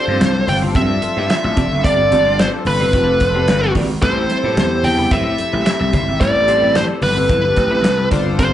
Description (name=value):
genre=early-eighties boogie funk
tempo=110 BPM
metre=4/4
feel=straight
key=A minor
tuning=A4 = 440 Hz
part: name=high-gain lead guitar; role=melody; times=0.0-8.5 s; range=B4 to G5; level=-17 LUFS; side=equal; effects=distortion, slapback echo
part: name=chorused polysynth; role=accompaniment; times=0.0-8.5 s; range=C4 to C5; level=-24 LUFS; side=left 2 dB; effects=slapback echo
part: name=clean electric guitar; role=riff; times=0.0-8.5 s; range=G3 to D5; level=-24 LUFS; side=right 4 dB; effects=ensemble chorus, slapback echo
part: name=gritty slap bass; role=bass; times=0.1-8.5 s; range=F1 to A2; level=-19 LUFS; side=left 1 dB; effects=overdrive
part: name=congas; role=percussion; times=0.1-8.5 s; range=none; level=-28 LUFS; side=left 1 dB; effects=none
part: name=damped 70s drum kit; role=drums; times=0.2-8.5 s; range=handclaps, hi-hat, kick drum, snare drum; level=-20 LUFS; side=equal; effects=none
room=light reverb, small room ambience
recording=live gig heard through the venue's PA, club reverb, nothing above 10.9 kHz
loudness=-13 LUFS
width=side -11 dB against mid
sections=0.0-8.5 A section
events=none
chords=0.0 G7sus4; 4.0 Am9